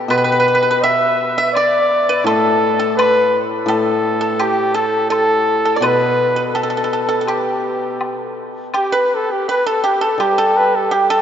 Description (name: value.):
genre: chinese traditional, Chinese chamber ensemble.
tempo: 83 BPM.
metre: 4/4.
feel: straight.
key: unclear.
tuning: A4 = 440 Hz.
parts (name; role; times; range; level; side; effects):
hammered dulcimer; accompaniment; 0.0-11.2 s; A2 to G3; -22 LUFS; left 1 dB; none.
warm flugelhorn; melody; 0.1-11.2 s; G4 to E5; -16 LUFS; left 1 dB; none.
pipa; second line; 0.1-11.2 s; G4 to E5; -19 LUFS; right 2 dB; none.
woodblock; percussion; 0.1-11.1 s; none; -29 LUFS; left 3 dB; none.
room: wet cathedral reverb, RT60 5.6 s.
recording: in a vast, echoing space, nothing above 7.7 kHz.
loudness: -14 LUFS.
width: side -9 dB against mid.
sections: 0.0-8.7 A section; 8.7-11.2 B section.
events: none.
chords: none.